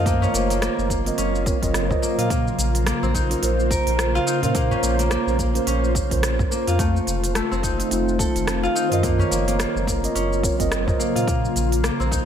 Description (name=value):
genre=organic downtempo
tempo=107 BPM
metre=4/4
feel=swing 58% on 16ths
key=Bb harmonic minor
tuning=A4 = 440 Hz
part: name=mellow tine electric piano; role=accompaniment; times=0.0-11.3 s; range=A3 to Eb5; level=-27 LUFS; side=right 4 dB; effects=medium stereo tremolo, sidechain pumping, ping-pong delay
part: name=ethereal airy pad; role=sustained chords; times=0.0-12.3 s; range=Db3 to C5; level=-28 LUFS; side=equal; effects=ensemble chorus, built-in reverb, sidechain pumping
part: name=Celtic harp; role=arpeggios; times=0.0-12.3 s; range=A3 to Bb4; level=-25 LUFS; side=left 2 dB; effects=ping-pong delay
part: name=warm sub bass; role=bass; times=0.0-12.3 s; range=F1 to Bb2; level=-24 LUFS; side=equal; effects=none
part: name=electronic kick drum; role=drums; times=0.1-12.2 s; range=none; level=-26 LUFS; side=equal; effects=overdrive
part: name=organic electronic drum kit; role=drums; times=0.1-12.3 s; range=cabasa, hi-hat, rim click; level=-28 LUFS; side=equal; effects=none
part: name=udu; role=percussion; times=0.2-11.0 s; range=none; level=-28 LUFS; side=right 1 dB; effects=none
room=light reverb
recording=none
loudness=-19 LUFS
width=side -9 dB against mid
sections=0.0-12.3 A section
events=none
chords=0.1 Gbmaj7; 2.3 Bbmadd9; 6.8 F7; 9.0 Gbmaj7; 11.3 Bbmadd9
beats=| 0.06 0.62 1.18 1.74 | 2.30 2.86 3.42 3.98 | 4.55 5.11 5.67 6.23 | 6.79 7.35 7.91 8.47 | 9.03 9.59 10.15 10.71 | 11.28 11.84